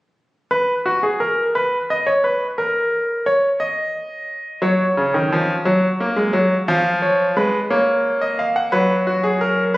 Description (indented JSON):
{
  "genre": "classical, baroque-style two-part invention for grand piano",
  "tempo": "58 BPM (dotted quarters)",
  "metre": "6/8",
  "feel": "straight",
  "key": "B major",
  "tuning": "A4 = 440 Hz",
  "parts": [
    { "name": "bright concert grand piano", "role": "solo", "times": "0.5-9.8 s", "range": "C#3 to F#5", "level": "-16 LUFS", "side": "equal", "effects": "none" }
  ],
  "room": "wet recital hall reverb, RT60 1.8 s",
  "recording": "recorded on a phone in the room, studio reverb, compression",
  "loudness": "-16 LUFS",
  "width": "side -18 dB against mid",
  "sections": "0.5-9.8 A section",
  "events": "none",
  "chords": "0.5 N.C.; 4.6 F#5; 5.7 F#add9; 6.7 C#7/E#; 7.7 F#/A#; 8.7 B5/F#"
}